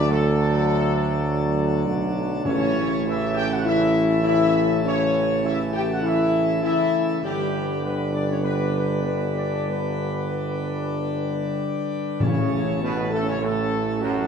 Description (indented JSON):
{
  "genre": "classical, ceremonial fanfare",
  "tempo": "100 BPM",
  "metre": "4/4",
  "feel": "straight",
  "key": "A mixolydian",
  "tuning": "A4 = 441 Hz",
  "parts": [
    { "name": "dark trumpet section", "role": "melody", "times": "0.0-14.3 s", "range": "F#4 to G5", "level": "-28 LUFS", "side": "equal", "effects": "none" },
    { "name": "pipe organ, plenum", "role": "sustained chords", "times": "0.0-14.3 s", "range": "D3 to B4", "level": "-28 LUFS", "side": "left 1 dB", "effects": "none" },
    { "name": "warm trombone section", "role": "sustained chords", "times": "0.0-14.3 s", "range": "F#2 to G3", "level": "-30 LUFS", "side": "right 2 dB", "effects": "none" },
    { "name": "clear tuba", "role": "bass", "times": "0.0-14.3 s", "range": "G1 to D2", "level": "-26 LUFS", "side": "right 3 dB", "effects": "none" },
    { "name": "dark French horn section", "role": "sustained chords", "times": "0.1-14.3 s", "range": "F#3 to G4", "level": "-26 LUFS", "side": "left 4 dB", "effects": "none" },
    { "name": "timpani", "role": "percussion", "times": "2.5-3.3, 12.2-13.1 s", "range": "A2", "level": "-28 LUFS", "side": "left 1 dB", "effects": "none" }
  ],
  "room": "wet recital hall reverb, RT60 1.6 s",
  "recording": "minimal, uncompressed stereo recording",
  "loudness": "-20 LUFS",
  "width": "side -6 dB against mid",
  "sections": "0.0-12.2 A section; 12.2-14.3 B section",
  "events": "none",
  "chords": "0.0 D; 2.5 A; 7.2 G; 12.2 A"
}